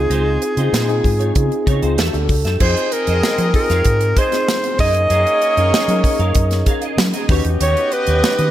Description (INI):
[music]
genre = polished 1980s jazz-funk pop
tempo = 96 BPM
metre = 4/4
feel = straight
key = unclear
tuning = A4 = 440 Hz
[part]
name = breathy alto saxophone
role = melody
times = 0.0-8.5 s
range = Ab4 to Eb5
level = -18 LUFS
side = right 1 dB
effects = none
[part]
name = mellow tine electric piano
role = accompaniment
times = 0.0-8.5 s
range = C4 to B4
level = -23 LUFS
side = left 2 dB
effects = medium stereo tremolo, wide subtle chorus
[part]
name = vintage muted fingered electric bass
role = bass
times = 0.0-8.5 s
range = Db2 to Gb3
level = -18 LUFS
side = equal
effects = none
[part]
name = clean electric guitar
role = riff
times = 0.1-8.4 s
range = Eb4 to F5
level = -27 LUFS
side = right 5 dB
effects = ensemble chorus
[part]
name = tight funk drum kit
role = drums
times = 0.1-8.5 s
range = crash cymbal, hi-hat, kick drum, snare drum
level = -19 LUFS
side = equal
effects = gated reverb
[part]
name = clear horn section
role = second line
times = 2.6-8.5 s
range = Bb3 to Eb5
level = -26 LUFS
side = left 2 dB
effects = none
[sound]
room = light reverb, studio reverb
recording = none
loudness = -14 LUFS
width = side -12 dB against mid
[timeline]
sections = 0.0-2.6 A section; 2.6-8.5 B section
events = none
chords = 0.0 Dbmaj9; 2.0 Em11; 2.6 Fm7; 4.8 Gb69; 7.3 Eb7alt